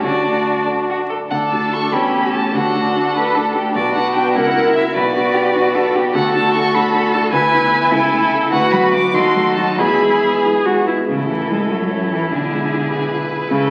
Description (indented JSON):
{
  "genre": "quick classical-period movement for piano quintet",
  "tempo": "92-102 BPM (dotted quarters)",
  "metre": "6/8",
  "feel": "rubato",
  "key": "D major, A major from 6.1 s",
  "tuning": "A4 = 440 Hz",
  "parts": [
    { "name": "clear violin", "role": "melody", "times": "0.0-13.7 s", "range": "C#4 to D6", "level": "-24 LUFS", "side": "equal", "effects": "none" },
    { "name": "rich cello", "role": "second line", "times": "0.0-13.7 s", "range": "C#3 to B4", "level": "-21 LUFS", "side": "equal", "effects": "none" },
    { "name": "rich violin", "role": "second line", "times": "0.0-13.7 s", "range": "D4 to B4", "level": "-27 LUFS", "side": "equal", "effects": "none" },
    { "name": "warm baby grand piano", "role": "accompaniment", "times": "0.0-13.7 s", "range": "A1 to E5", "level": "-24 LUFS", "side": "equal", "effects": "none" },
    { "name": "warm viola", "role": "accompaniment", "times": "0.0-13.7 s", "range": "C#4 to G#4", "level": "-23 LUFS", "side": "equal", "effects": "none" }
  ],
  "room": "wet recital hall reverb, RT60 1.6 s",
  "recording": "very old 78 rpm record, vinyl crackle",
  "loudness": "-16 LUFS",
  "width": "mono",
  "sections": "0.0-1.3 A section; 1.3-11.1 B section; 11.1-13.7 A section",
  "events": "none",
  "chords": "0.0 D; 1.9 A7/E; 2.5 D; 3.8 Bm; 4.4 F#7/C#; 5.0 Bm; 6.1 D; 7.3 E7/D; 7.9 A/C#; 8.5 Bm/D; 9.1 D#dim7; 9.8 E; 11.1 A; 12.3 E7/B",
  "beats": "| 0.04 0.67 | 1.31 1.93 | 2.55 3.16 | 3.76 4.36 | 4.96 5.55 | 6.14 6.74 | 7.33 7.92 | 8.52 9.14 | 9.79 10.44 | 11.08 11.70 | 12.31 12.91 | 13.50"
}